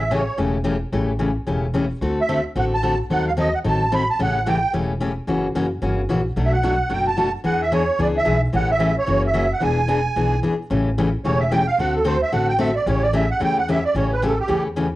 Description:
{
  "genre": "acoustic string swing (jazz manouche)",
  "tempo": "221 BPM",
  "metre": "4/4",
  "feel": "swing 57% on 8ths",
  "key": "A mixolydian",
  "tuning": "A4 = 442 Hz",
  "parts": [
    { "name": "musette accordion", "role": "melody", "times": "0.0-14.6 s", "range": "G4 to B5", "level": "-21 LUFS", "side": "right 2 dB", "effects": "cassette tape" },
    { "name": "picked steel-string acoustic guitar", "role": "accompaniment", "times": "0.0-14.9 s", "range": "B2 to A4", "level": "-22 LUFS", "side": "left 2 dB", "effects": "none" },
    { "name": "upright bass", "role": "bass", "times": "0.0-14.9 s", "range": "E1 to E2", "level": "-24 LUFS", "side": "equal", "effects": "none" }
  ],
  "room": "moderate studio reverb, RT60 0.6 s",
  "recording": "home recording on cassette",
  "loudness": "-18 LUFS",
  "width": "side -16 dB against mid",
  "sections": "0.0-10.7 A section; 10.7-15.0 B section",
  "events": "break 10.4; accordion solo 10.7-15.0",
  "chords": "0.0 A7; 2.0 D7; 3.1 D#dim7; 4.2 A7; 5.3 F#7b9; 6.4 Bm7; 7.5 E7; 8.5 A7; 9.1 F#7; 9.6 E7; 10.7 A7; 11.8 D7; 12.9 A7"
}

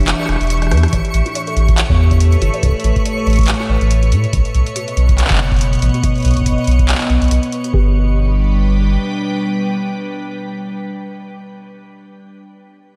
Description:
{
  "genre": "IDM",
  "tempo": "141 BPM",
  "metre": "4/4",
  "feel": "swing 56% on 16ths",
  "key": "G lydian",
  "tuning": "A4 = 439 Hz",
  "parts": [
    { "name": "icy glass pad", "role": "sustained chords", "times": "0.0-11.1 s", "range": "A2 to G5", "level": "-23 LUFS", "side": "equal", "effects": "chorus, built-in reverb, vintage 12-bit sampler grit, shimmer reverb" },
    { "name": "warm sub bass", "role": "bass", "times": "0.0-9.0 s", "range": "E1 to A2", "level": "-16 LUFS", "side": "equal", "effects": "none" },
    { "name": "booming analog drum machine", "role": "drums", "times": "0.0-7.7 s", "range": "handclaps, hi-hat, rim click", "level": "-25 LUFS", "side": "equal", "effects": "slapback echo, delay" },
    { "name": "twinkling granular texture", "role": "texture", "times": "0.0-7.7 s", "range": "C#6", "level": "-31 LUFS", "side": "equal", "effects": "built-in reverb, shimmer reverb" },
    { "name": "warbly dusty pluck", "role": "arpeggios", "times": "0.1-7.9 s", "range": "E4 to B5", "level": "-34 LUFS", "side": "equal", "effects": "ensemble chorus, delay, shimmer reverb" },
    { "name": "electronic kick drum", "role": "drums", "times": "0.9-7.8 s", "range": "none", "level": "-20 LUFS", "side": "equal", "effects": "none" }
  ],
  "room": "light reverb, digital ambience",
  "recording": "none",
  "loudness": "-15 LUFS",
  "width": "mono",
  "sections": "0.0-7.7 A section; 7.7-11.1 B section",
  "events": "none",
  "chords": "0.0 Em7; 0.9 Aadd9; 4.3 Badd9; 7.7 G"
}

